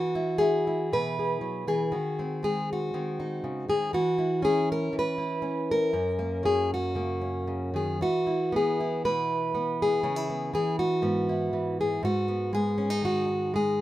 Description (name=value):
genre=folk, solo fingerstyle acoustic guitar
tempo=119 BPM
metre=4/4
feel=rubato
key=unclear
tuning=A4 = 435 Hz
part: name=fingerpicked plugged-in steel-string acoustic guitar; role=solo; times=0.0-13.8 s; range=F#2 to B4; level=-25 LUFS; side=equal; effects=none
room=light reverb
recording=minimal, uncompressed stereo recording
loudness=-25 LUFS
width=side -14 dB against mid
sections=0.0-13.8 A section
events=none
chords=0.0 Eadd9; 1.9 G#7/D#; 3.9 C#m/E; 5.9 F#; 8.0 E; 10.0 C#m7; 12.0 G#m7